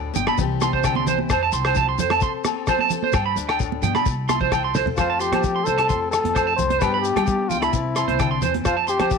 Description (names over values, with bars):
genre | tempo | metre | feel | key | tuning
highlife guitar band | 130 BPM | 4/4 | straight | F major | A4 = 440 Hz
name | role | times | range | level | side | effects
picked steel-string acoustic guitar | accompaniment | 0.0-9.2 s | F2 to A4 | -29 LUFS | left 14 dB | none
upright bass | bass | 0.0-9.2 s | G1 to G3 | -28 LUFS | left 1 dB | none
shekere | percussion | 0.1-9.2 s | none | -31 LUFS | left 12 dB | none
electric guitar at the edge of break-up | arpeggios | 0.2-9.1 s | C5 to C6 | -23 LUFS | right 13 dB | slapback echo
damped 70s drum kit | drums | 0.2-9.2 s | hi-hat, kick drum, rim click, snare drum, toms | -26 LUFS | equal | none
congas | percussion | 0.2-9.1 s | none | -29 LUFS | right 13 dB | none
agogo bells | percussion | 0.3-9.1 s | none | -28 LUFS | left 17 dB | none
trumpet with bucket mute | melody | 5.0-9.2 s | E4 to C5 | -23 LUFS | left 4 dB | none
room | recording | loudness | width
light reverb, small room ambience | 1960s-style stereo with parts hard left and right | -18 LUFS | side -5 dB against mid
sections
0.0-5.0 A section; 5.0-9.2 B section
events
drum fill 4.7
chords
0.4 C; 1.3 F; 3.1 G; 4.1 C; 5.0 F; 6.8 G; 7.7 C; 8.7 F